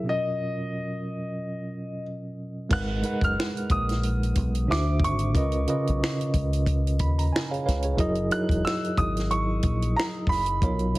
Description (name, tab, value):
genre	R&B, neo-soul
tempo	91 BPM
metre	4/4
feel	swing 56% on 16ths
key	unclear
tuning	A4 = 440 Hz
part	clear concert grand piano	melody	0.0-11.0 s	D#5 to F#6	-30 LUFS	equal	plate reverb
part	mellow tine electric piano	accompaniment	0.0-11.0 s	B2 to B5	-28 LUFS	right 1 dB	fast tremolo, plate reverb
part	deep dub fingered electric bass	bass	2.7-10.9 s	E1 to D#2	-26 LUFS	equal	none
part	compact cocktail drum kit	drums	2.7-11.0 s	crash cymbal, finger snaps, hi-hat, kick drum, snare drum	-28 LUFS	equal	none
room	moderate studio reverb, RT60 0.8 s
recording	heavily compressed radio sound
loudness	-23 LUFS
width	side -19 dB against mid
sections	0.0-2.7 A section; 2.7-11.0 B section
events	tine electric piano fill 6.7-8.0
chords	0.1 Bmaj9#11; 2.7 G#m9; 4.7 D9; 5.3 C#13; 8.0 F#13